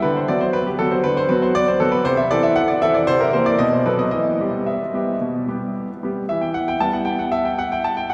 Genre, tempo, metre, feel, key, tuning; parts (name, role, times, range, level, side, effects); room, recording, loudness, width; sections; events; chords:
classical-period piano sonatina; 109-121 BPM; 4/4; rubato; E minor; A4 = 440 Hz
clear baby grand piano; solo; 0.0-8.1 s; B2 to A5; -20 LUFS; equal
wet cathedral reverb, RT60 5.6 s; heard from further back in the room; -20 LUFS; mono
0.0-6.3 A section; 6.3-8.1 A section
0.0 Bm/D; 2.1 Am/C; 3.1 C7; 3.6 B5; 4.1 Em